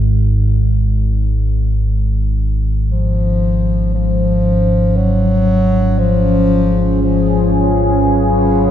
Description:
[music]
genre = dark ambient drone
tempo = 58 BPM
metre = 4/4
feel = straight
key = unclear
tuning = A4 = 440 Hz
[part]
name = deep rumbling drone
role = drone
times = 0.0-8.7 s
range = G#1 to G#2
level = -14 LUFS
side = equal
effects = built-in reverb
[part]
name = dark bass clarinet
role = melody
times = 2.9-8.7 s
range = E#3 to F#3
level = -16 LUFS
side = left 3 dB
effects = diffuse ambient delay
[part]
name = deep dark ambient pad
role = sustained chords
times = 4.5-8.7 s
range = C#4 to B4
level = -18 LUFS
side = right 1 dB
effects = chorus, built-in reverb
[sound]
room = moderate cathedral reverb, RT60 5.9 s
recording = in a vast, echoing space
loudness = -12 LUFS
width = side -10 dB against mid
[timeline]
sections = 0.0-8.7 A section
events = none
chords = 0.0 N.C.; 2.9 C#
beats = 0.82 1.85 | 2.89 3.92 4.96 5.99 | 7.03 8.06

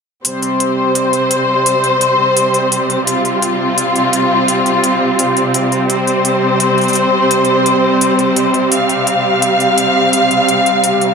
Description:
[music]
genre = half-time drum and bass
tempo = 170 BPM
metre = 4/4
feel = swing 60% on 16ths, half-time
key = unclear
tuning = A4 = 440 Hz
[part]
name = rich studio string section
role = sustained chords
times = 0.2-11.1 s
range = C3 to F5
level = -11 LUFS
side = equal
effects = none
[part]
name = electronic hi-hat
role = drums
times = 0.2-11.1 s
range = none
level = -17 LUFS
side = left 1 dB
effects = small room ambience
[sound]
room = moderate echo chamber reverb, RT60 1.4 s, small room ambience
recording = none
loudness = -11 LUFS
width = side -5 dB against mid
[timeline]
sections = 0.2-11.1 A section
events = none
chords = 0.2 C5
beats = | 0.25 0.60 0.95 1.31 | 1.66 2.01 2.37 2.72 | 3.07 3.42 3.78 4.13 | 4.48 4.84 5.19 5.54 | 5.89 6.25 6.60 6.95 | 7.31 7.66 8.01 8.37 | 8.72 9.07 9.42 9.78 | 10.13 10.48 10.84

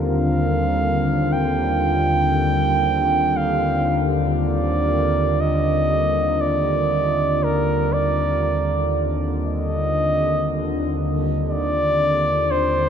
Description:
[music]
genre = ambient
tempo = free time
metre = none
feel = none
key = Eb major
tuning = A4 = 440 Hz
[part]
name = mellow flugelhorn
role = melody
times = 0.0-12.9 s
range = Bb4 to G5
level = -21 LUFS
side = right 2 dB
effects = tape echo
[part]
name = warm analog pad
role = sustained chords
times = 0.0-12.9 s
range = Eb2 to Bb4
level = -20 LUFS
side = left 1 dB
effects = chorus
[sound]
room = wet cathedral reverb, RT60 5.6 s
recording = none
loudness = -18 LUFS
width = side -8 dB against mid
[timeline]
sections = 0.0-12.9 A section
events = none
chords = 0.0 Ebmaj9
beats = free time

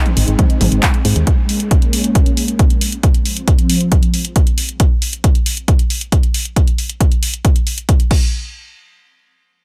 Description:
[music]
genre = uplifting trance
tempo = 136 BPM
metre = 4/4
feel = straight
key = unclear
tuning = A4 = 440 Hz
[part]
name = analog string pad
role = sustained chords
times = 0.0-4.8 s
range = F3 to Eb4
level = -23 LUFS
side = equal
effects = ensemble chorus, sidechain pumping
[part]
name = punchy analog drum machine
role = drums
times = 0.1-8.2 s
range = crash cymbal, handclaps, hi-hat, toms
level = -23 LUFS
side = equal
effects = sidechain pumping on hats, sidechain pumping on toms, sidechain pumping on cymbals
[part]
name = solid FM bass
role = bass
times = 0.2-1.2 s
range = Ab1 to Ab2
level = -16 LUFS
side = equal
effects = sidechain pumping
[part]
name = electronic kick drum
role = drums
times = 0.4-8.2 s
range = none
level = -16 LUFS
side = equal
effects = none
[sound]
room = little or no reverb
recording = none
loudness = -15 LUFS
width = mono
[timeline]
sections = 0.0-8.3 A section; 8.3-9.6 B section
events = none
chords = 0.0 Ab; 1.3 Bbm7; 3.0 Fm; 4.8 N.C.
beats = 0.39 0.83 | 1.27 1.71 2.15 2.59 | 3.03 3.48 3.92 4.36 | 4.80 5.24 5.68 6.12 | 6.56 7.00 7.45 7.89

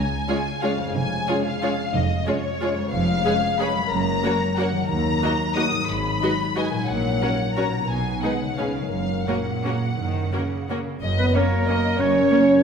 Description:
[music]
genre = classical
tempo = 161-199 BPM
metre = 3/4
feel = rubato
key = F# major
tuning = A4 = 442 Hz
[part]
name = muted symphonic violin section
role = melody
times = 0.0-12.6 s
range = A#4 to D#6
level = -27 LUFS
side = left 4 dB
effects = none
[part]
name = concert harp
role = arpeggios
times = 0.0-12.6 s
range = F2 to C#5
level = -28 LUFS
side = left 5 dB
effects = none
[part]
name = muted symphonic cello section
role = bass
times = 0.0-12.3 s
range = Db2 to D#3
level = -29 LUFS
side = right 3 dB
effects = none
[part]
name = muted symphonic double bass section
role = bass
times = 0.0-12.3 s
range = F1 to D#2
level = -28 LUFS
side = right 3 dB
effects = none
[part]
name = muted symphonic violin section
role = second line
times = 0.3-12.6 s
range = F#4 to D#5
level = -31 LUFS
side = left 2 dB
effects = none
[part]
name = muted symphonic viola section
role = accompaniment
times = 0.3-12.4 s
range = Ab3 to G#4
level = -29 LUFS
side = right 2 dB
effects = none
[part]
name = mellow French horn section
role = sustained chords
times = 0.3-12.6 s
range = C#3 to D#4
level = -25 LUFS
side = right 1 dB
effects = none
[part]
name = clear oboe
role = second line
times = 11.2-12.6 s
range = A#4 to C#5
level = -28 LUFS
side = right 4 dB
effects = none
[sound]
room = wet scoring stage reverb, RT60 1.8 s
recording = minimal, uncompressed stereo recording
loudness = -20 LUFS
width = side -6 dB against mid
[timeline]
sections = 0.0-11.0 A section; 11.0-12.6 B section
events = none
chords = 0.0 Db; 0.9 Db/F; 2.9 C#7/E#; 3.9 F#; 4.9 D#m; 5.9 G#m7; 6.9 F#/A#; 7.9 G#m/B; 8.6 C#7; 8.9 F#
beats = 0.28 0.62 | 0.95 1.27 1.62 | 1.94 2.27 2.61 | 2.93 3.25 3.59 | 3.91 4.24 4.58 | 4.90 5.23 5.57 | 5.89 6.22 6.57 | 6.89 7.22 7.57 | 7.90 8.23 8.59 | 8.92 9.28 9.64 | 9.98 10.33 10.69 | 11.02 11.35 11.68 | 11.99 12.31

